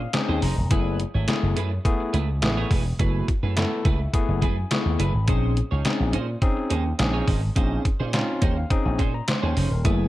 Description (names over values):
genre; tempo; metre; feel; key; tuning
early-eighties boogie funk; 105 BPM; 4/4; straight; unclear; A4 = 440 Hz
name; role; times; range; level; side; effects
overdriven tine electric piano; accompaniment; 0.0-10.1 s; A3 to Db6; -28 LUFS; moving between left 8 dB and equal; auto-pan
clean electric guitar; riff; 0.0-10.1 s; A3 to Db5; -32 LUFS; right 7 dB; lush chorus
slap bass with an envelope filter; bass; 0.0-10.1 s; Eb1 to Bb2; -24 LUFS; equal; none
detuned 8-bit digital drum machine; drums; 0.1-10.0 s; handclaps, hi-hat, kick drum, snare drum; -24 LUFS; equal; gated reverb
room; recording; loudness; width
light reverb, digital ambience; none; -21 LUFS; side -16 dB against mid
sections
0.0-10.1 A section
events
tine electric piano fill 0.0-0.7, 3.6-5.3, 8.1-9.8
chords
0.0 Bbm11; 0.7 Gbm11; 5.3 Bbm11